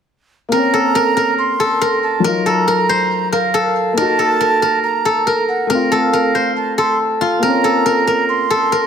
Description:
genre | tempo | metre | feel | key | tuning
hip hop | 139 BPM | 4/4 | half-time | Bb harmonic minor | A4 = 440 Hz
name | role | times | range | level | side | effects
steel-string zither | melody | 0.5-8.9 s | F4 to C5 | -15 LUFS | left 1 dB | digital delay
reedy concert flute | second line | 0.5-8.9 s | F5 to C6 | -19 LUFS | right 6 dB | digital delay
felt-muted upright piano | accompaniment | 0.5-8.9 s | Gb3 to Gb4 | -21 LUFS | left 4 dB | none
room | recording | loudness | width
light reverb | none | -13 LUFS | side -7 dB against mid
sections
0.5-8.9 A section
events
none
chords
0.5 Bbmadd9; 2.2 Ebmadd9; 4.0 Gb6; 5.7 F; 7.4 Bbmadd9

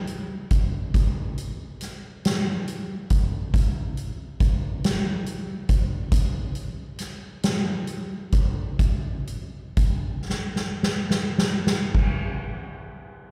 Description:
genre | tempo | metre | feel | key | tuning
pop | 34-47 BPM (dotted quarters) | 6/8 | straight | none | none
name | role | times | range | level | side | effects
soft-mallet drum kit | drums | 0.1-12.2 s | crash cymbal, hi-hat, kick drum, snare drum | -26 LUFS | equal | none
room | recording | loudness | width
moderate club reverb, RT60 0.6 s | live gig heard through the venue's PA, recital hall reverb | -25 LUFS | mono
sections
0.0-12.0 A section; 12.0-13.3 B section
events
slowing down 6.1-12.0; drum fill 10.3-12.0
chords
none

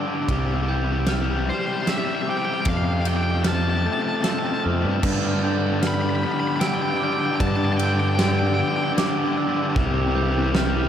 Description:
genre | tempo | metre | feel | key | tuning
post-rock | 76 BPM | 3/4 | straight | C major | A4 = 438 Hz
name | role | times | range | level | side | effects
electric guitar through a small old amp | arpeggios | 0.0-10.9 s | F2 to G4 | -29 LUFS | right 1 dB | diffuse ambient delay
glockenspiel with soft plastic mallets | arpeggios | 0.0-10.9 s | D6 to G6 | -32 LUFS | right 7 dB | diffuse ambient delay
overdriven electric guitar | riff | 0.0-10.9 s | F2 to G3 | -25 LUFS | left 4 dB | none
growling fingered electric bass | bass | 0.3-10.9 s | C2 to G2 | -23 LUFS | right 1 dB | overdrive
big rock drum kit | drums | 0.3-10.7 s | crash cymbal, kick drum, ride cymbal, snare drum | -28 LUFS | right 2 dB | none
cranked stack guitar | melody | 1.5-8.9 s | C5 to B5 | -28 LUFS | equal | overdrive, diffuse ambient delay
room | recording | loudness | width
moderate huge ambient reverb, RT60 4.2 s | dreamy mix soaked in reverb | -20 LUFS | side -9 dB against mid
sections
0.0-10.9 A section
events
build-up 0.0-10.9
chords
0.3 C; 2.7 F; 5.0 G; 9.8 C

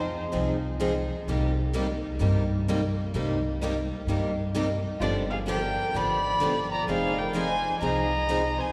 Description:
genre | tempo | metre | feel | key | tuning
acoustic string swing (jazz manouche) | 128 BPM | 4/4 | swing 64% on 8ths | C minor | A4 = 436 Hz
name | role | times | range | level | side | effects
warm violin | melody | 0.0-0.2, 5.0-8.7 s | C5 to B5 | -31 LUFS | equal | none
dark violin | second line | 0.0-0.1, 5.0-8.7 s | Eb4 to Eb5 | -37 LUFS | equal | none
upright bass | bass | 0.0-8.6 s | F1 to G2 | -32 LUFS | equal | none
picked steel-string acoustic guitar | accompaniment | 0.3-8.4 s | C3 to Ab4 | -32 LUFS | equal | none
picked steel-string acoustic guitar | accompaniment | 0.3-8.4 s | C3 to Ab4 | -36 LUFS | equal | none
room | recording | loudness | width
wet cathedral reverb, RT60 5.0 s | recorded in a church or concert hall | -27 LUFS | mono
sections
0.0-8.7 A section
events
none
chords
0.0 Fm7; 1.3 Cm7; 5.0 G7#9; 6.9 Fm7

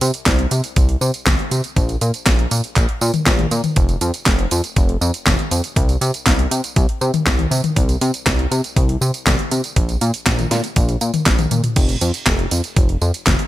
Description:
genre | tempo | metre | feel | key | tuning
italo disco | 120 BPM | 4/4 | straight | unclear | A4 = 439 Hz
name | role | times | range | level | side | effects
chorused synth bass | bass | 0.0-13.4 s | F1 to C3 | -19 LUFS | equal | none
house drum kit | drums | 0.0-13.5 s | crash cymbal, handclaps, hi-hat, snare drum, tambourine, toms | -20 LUFS | equal | none
electronic kick drum | drums | 0.3-13.4 s | none | -17 LUFS | equal | none
room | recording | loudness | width
little or no reverb | none | -15 LUFS | side -15 dB against mid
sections
0.0-13.5 A section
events
drum fill 11.5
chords
none

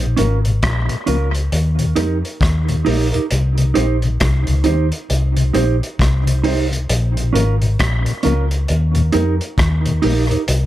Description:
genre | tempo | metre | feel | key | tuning
dub reggae | 67 BPM | 4/4 | swing 60% on 16ths | unclear | A4 = 443 Hz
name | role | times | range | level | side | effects
mellow tonewheel organ | accompaniment | 0.0-10.4 s | Eb2 to Eb4 | -25 LUFS | left 3 dB | slow rotary speaker, dub echo
vintage muted fingered electric bass | bass | 0.0-10.7 s | Ab1 to F2 | -16 LUFS | left 1 dB | none
mellow electric guitar | accompaniment | 0.2-10.4 s | Db4 to C5 | -22 LUFS | right 5 dB | dub echo
crunchy breakbeat drum kit | drums | 0.2-10.7 s | hi-hat, kick drum, rim click | -21 LUFS | equal | dub echo
room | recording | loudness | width
light reverb | none | -14 LUFS | side -14 dB against mid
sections
0.0-10.7 A section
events
none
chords
0.0 Bbm; 1.5 Eb; 3.3 Cm; 6.9 Bbm; 8.7 Eb

